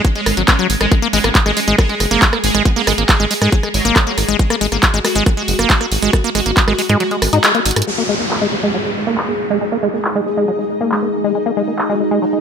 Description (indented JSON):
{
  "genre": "psychedelic trance",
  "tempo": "138 BPM",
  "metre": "4/4",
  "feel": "straight",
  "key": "unclear",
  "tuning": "A4 = 440 Hz",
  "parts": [
    { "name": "pulsing gated texture", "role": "sustained chords", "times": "0.0-12.4 s", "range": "G#3 to G#4", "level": "-21 LUFS", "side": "equal", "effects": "chorus, built-in reverb, sidechain pumping" },
    { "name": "liquid acid bass", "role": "riff", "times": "0.0-12.4 s", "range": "F#3 to D#4", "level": "-18 LUFS", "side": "moving between left 8 dB and right 8 dB", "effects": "chorus, auto-pan, sidechain pumping, tape echo" },
    { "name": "drum and bass drum kit", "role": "drums", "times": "0.0-11.9 s", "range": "handclaps, hi-hat, rim click", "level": "-17 LUFS", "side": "right 1 dB", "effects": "low-pass filter on snare, low-pass filter on hats, low-pass filter on cymbals, low-pass filter on room" },
    { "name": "electronic kick drum", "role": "drums", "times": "0.0-6.7 s", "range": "none", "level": "-14 LUFS", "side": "equal", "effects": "none" },
    { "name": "round analog bass", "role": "bass", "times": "0.3-7.8 s", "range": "F#1 to G#2", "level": "-19 LUFS", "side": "equal", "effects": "none" },
    { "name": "metallic wobble bass", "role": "second line", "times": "1.1-4.2 s", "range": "F#3 to B3", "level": "-31 LUFS", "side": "right 4 dB", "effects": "none" },
    { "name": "downlifter", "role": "sound effects", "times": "7.9-11.3 s", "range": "none", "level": "-23 LUFS", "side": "equal", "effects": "none" },
    { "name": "granular cloud pad", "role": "texture", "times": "9.2-12.4 s", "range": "D#4 to D#5", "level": "-22 LUFS", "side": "right 1 dB", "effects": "built-in reverb, sidechain pumping" }
  ],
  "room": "light reverb",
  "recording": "none",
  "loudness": "-13 LUFS",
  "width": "side -7 dB against mid",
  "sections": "0.0-7.9 A section; 7.9-12.4 B section",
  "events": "drop 0.0-7.9; kick drops out 7.0-7.9; band accent 7.4; drum fill 7.7; filter sweep on synth texture 7.9-12.4",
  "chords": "0.0 G#5"
}